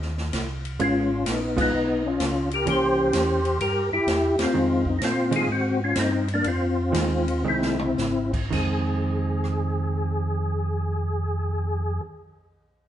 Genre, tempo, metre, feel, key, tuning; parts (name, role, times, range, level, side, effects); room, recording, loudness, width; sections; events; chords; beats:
soul jazz organ trio; 109-128 BPM; 4/4; swing 67% on 8ths; F minor; A4 = 442 Hz
mellow tonewheel organ; bass; 0.0-12.0 s; Ab1 to Bb2; -28 LUFS; equal; chorus vibrato, slow rotary speaker
swinging big-band drum kit; drums; 0.0-9.5 s; crash cymbal, hi-hat, kick drum, ride cymbal, rim click, snare drum, toms; -31 LUFS; equal
percussive tonewheel organ; melody; 0.8-12.0 s; Bb3 to C5; -24 LUFS; left 2 dB; slow rotary speaker, chorus vibrato
hollow-body jazz guitar; accompaniment; 0.8-12.1 s; Eb3 to F4; -28 LUFS; right 3 dB
wet stone room reverb, RT60 1.3 s; band playing live in one room, nothing above 10.7 kHz, faint mains hum; -22 LUFS; side -11 dB against mid
0.0-8.5 A section; 8.5-12.9 B section
band accent 1.5, 4.3; slowing down 4.5-8.5; drum fill 7.5-8.0
0.0 F7(no3) (rootless); 0.8 Db7; 2.7 C7b9; 4.5 Fm7
0.33 | 0.80 1.27 1.73 2.20 | 2.67 3.14 3.60 4.07 | 4.54 5.01 5.48 5.96 | 6.45 6.95 7.46 7.98 | 8.52 9.07 9.62 10.17 | 10.72 11.27 11.82